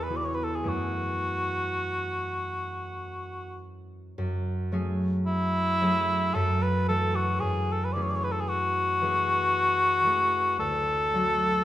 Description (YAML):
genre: classical, impressionist duo for cor anglais and harp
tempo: 50-57 BPM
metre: 3/4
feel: rubato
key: F# minor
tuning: A4 = 438 Hz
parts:
  - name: warm cor anglais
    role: melody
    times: 0.0-11.6 s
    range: E4 to D5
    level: -26 LUFS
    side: left 1 dB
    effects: none
  - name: concert harp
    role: accompaniment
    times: 0.0-11.6 s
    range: D2 to A4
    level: -29 LUFS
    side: equal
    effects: none
room: wet stone room reverb, RT60 1.3 s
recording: none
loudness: -24 LUFS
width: side -13 dB against mid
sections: 0.0-4.2 A section; 4.2-11.6 B section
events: none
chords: 0.0 Esus2; 0.7 F#m9; 6.4 F#m7; 7.4 F#m9; 10.6 Dmaj7